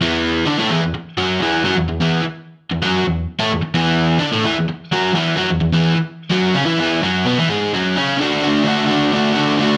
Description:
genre	rock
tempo	129 BPM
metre	4/4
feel	straight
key	unclear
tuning	A4 = 439 Hz
part	overdriven electric guitar	solo	0.0-9.8 s	E2 to F#4	-17 LUFS	equal	none
room	moderate studio reverb, RT60 0.8 s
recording	none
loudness	-17 LUFS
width	mono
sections	0.0-8.2 A section; 8.2-9.8 B section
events	none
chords	0.0 N.C.; 8.2 D

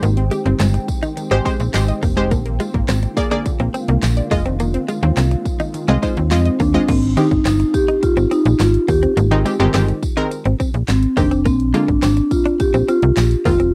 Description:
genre	dance-pop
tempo	105 BPM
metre	4/4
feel	straight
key	unclear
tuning	A4 = 439 Hz
part	unison pluck	accompaniment	0.0-13.7 s	D3 to Eb5	-22 LUFS	equal	none
part	shimmering ambient pad	sustained chords	0.0-6.9 s	D3 to G4	-30 LUFS	equal	chorus, built-in reverb, sidechain pumping
part	unison pluck	arpeggios	0.0-6.8 s	D3 to Eb5	-30 LUFS	equal	sidechain pumping, tape echo
part	direct-recorded clean electric guitar	riff	0.0-13.7 s	Ab3 to Eb4	-27 LUFS	equal	subtle chorus
part	slap-like FM bass	bass	0.0-13.7 s	F1 to F2	-20 LUFS	equal	sidechain pumping
part	pop drum kit	drums	0.0-13.7 s	crash cymbal, handclaps, hi-hat, kick drum, snare drum	-25 LUFS	equal	cassette tape
part	tambourine	percussion	0.0-13.6 s	none	-41 LUFS	equal	none
part	marimba with medium mallets	melody	6.3-13.7 s	C4 to G4	-19 LUFS	equal	cassette tape
room	little or no reverb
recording	home recording on cassette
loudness	-17 LUFS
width	mono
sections	0.0-6.9 A section; 6.9-13.7 B section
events	none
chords	0.0 Abmaj7; 2.3 Bb7; 4.3 Fm7; 6.9 Abmaj7; 11.5 Bb7

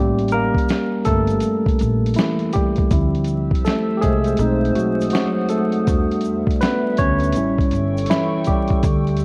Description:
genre	lo-fi hip hop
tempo	81 BPM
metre	4/4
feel	swing 65% on 16ths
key	unclear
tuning	A4 = 440 Hz
part	barky tine electric piano	accompaniment	0.0-9.2 s	E3 to C#5	-22 LUFS	equal	cassette tape, low-pass filter
part	upright bass	bass	0.0-9.2 s	G1 to E2	-25 LUFS	equal	none
part	dusty soul sampler-style drum kit	drums	0.2-9.2 s	hi-hat, kick drum, snare drum	-23 LUFS	equal	vintage 12-bit sampler grit
part	tube shaker	percussion	0.3-9.2 s	none	-49 LUFS	equal	none
part	warbly tape-like pad	sustained chords	3.4-9.2 s	G3 to E6	-31 LUFS	equal	chorus, built-in reverb, phaser, low-pass filter
room	moderate spring reverb, RT60 3.0 s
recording	worn, warbling old tape, cassette tape, vinyl crackle, warbly pitch drift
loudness	-19 LUFS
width	mono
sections	0.0-9.2 A section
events	tine electric piano solo 0.0-9.2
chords	0.0 A7b9; 2.9 Dm9; 4.4 B7b9; 5.9 Em7; 7.4 A7

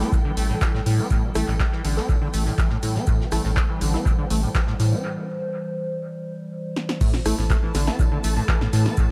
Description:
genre	acid house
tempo	122 BPM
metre	4/4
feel	straight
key	A minor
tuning	A4 = 436 Hz
part	warbly tape-like pad	sustained chords	0.0-9.1 s	E3 to C5	-34 LUFS	equal	chorus, built-in reverb, sidechain pumping
part	liquid acid bass	riff	0.0-9.1 s	A2 to C4	-30 LUFS	equal	overdrive, lush chorus, sidechain pumping, analog delay
part	filtered dub chord stab	stabs	0.0-4.1, 7.3-8.0 s	A3 to A4	-35 LUFS	equal	phaser, analog delay
part	saturated sub bass	bass	0.0-8.9 s	A1 to A2	-25 LUFS	equal	sidechain pumping
part	tight metal drum kit	drums	0.0-9.1 s	hi-hat, shaker, snare drum	-44 LUFS	equal	sidechain pumping on hats, high-pass filter on hats, high-pass filter on snare, sidechain pumping on perc, high-pass filter on perc, high-pass filter on room
part	tambourine	percussion	0.0-9.1 s	none	-42 LUFS	equal	none
part	dark symphonic string section	texture	0.0-9.1 s	E4 to A5	-38 LUFS	equal	sidechain pumping
part	electronic kick drum	drums	0.1-9.1 s	none	-24 LUFS	equal	none
part	punchy analog drum machine	drums	0.4-9.0 s	crash cymbal, handclaps, hi-hat, rim click, snare drum	-33 LUFS	equal	analog delay
room	studio reverb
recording	echo-heavy mix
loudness	-22 LUFS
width	mono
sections	0.0-7.0 A section; 7.0-9.1 B section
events	break 5.0-7.0; drum fill 6.8; drop 7.0-9.1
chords	0.0 A5

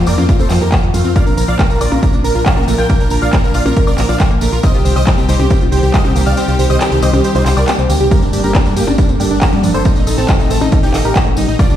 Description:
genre	uplifting trance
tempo	138 BPM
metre	4/4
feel	straight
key	unclear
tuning	A4 = 440 Hz
part	supersaw chords	melody	0.0-11.8 s	Bb3 to G5	-19 LUFS	right 1 dB	sidechain pumping, dub echo
part	clear grand piano	second line	0.0-11.8 s	D5 to G6	-26 LUFS	left 2 dB	sidechain pumping, dub echo
part	lush unison pad	sustained chords	0.0-11.8 s	Eb3 to D4	-20 LUFS	left 1 dB	chorus, sidechain pumping
part	tight sequenced synth	arpeggios	0.0-11.7 s	D3 to C5	-21 LUFS	right 1 dB	chorus, phaser, sidechain pumping, dub echo
part	solid FM bass	bass	0.0-11.8 s	F1 to F2	-16 LUFS	equal	tube saturation, sidechain pumping
part	techno drum kit	drums	0.1-11.8 s	handclaps, hi-hat, percussion blips	-20 LUFS	left 1 dB	sidechain pumping on hats, sidechain pumping on cymbals, sidechain pumping on perc
part	tambourine	percussion	0.1-11.8 s	none	-30 LUFS	left 4 dB	none
part	electronic kick drum	drums	0.3-11.7 s	none	-14 LUFS	equal	none
room	light reverb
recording	played on a big sound system in a bare room, stone room reverb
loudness	-10 LUFS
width	side -11 dB against mid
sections	0.0-11.8 A section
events	kick drops out 6.4-8.1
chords	0.0 Fsus4; 1.2 Bb; 4.6 Cm; 8.1 Gmadd9; 9.9 Adim

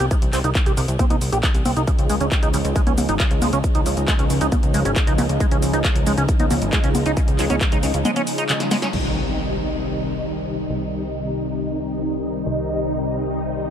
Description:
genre	uplifting trance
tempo	136 BPM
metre	4/4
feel	straight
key	C minor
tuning	A4 = 441 Hz
part	liquid acid bass	arpeggios	0.0-8.9 s	C3 to G4	-26 LUFS	right 2 dB	analog chorus, sidechain pumping, ping-pong delay
part	plucky analog bass	bass	0.0-13.7 s	Ab1 to Db2	-24 LUFS	equal	sidechain pumping
part	punchy analog drum machine	drums	0.0-9.0 s	congas, crash cymbal, handclaps, hi-hat, shaker, snare drum	-25 LUFS	left 1 dB	none
part	electronic kick drum	drums	0.1-7.7 s	none	-19 LUFS	equal	none
part	analog string pad	sustained chords	1.9-13.7 s	C3 to Eb4	-24 LUFS	left 1 dB	ensemble chorus, sidechain pumping
part	impact	sound effects	8.9-10.7 s	none	-29 LUFS	equal	none
room	light reverb, digital ambience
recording	none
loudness	-18 LUFS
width	side -9 dB against mid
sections	0.0-8.9 A section; 8.9-13.7 B section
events	filter sweep on acid bass 0.0-8.9; drum fill 8.6-8.9; band accent 8.8; impact 8.9-10.7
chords	0.0 N.C.; 1.9 Dbadd9; 8.9 Cm

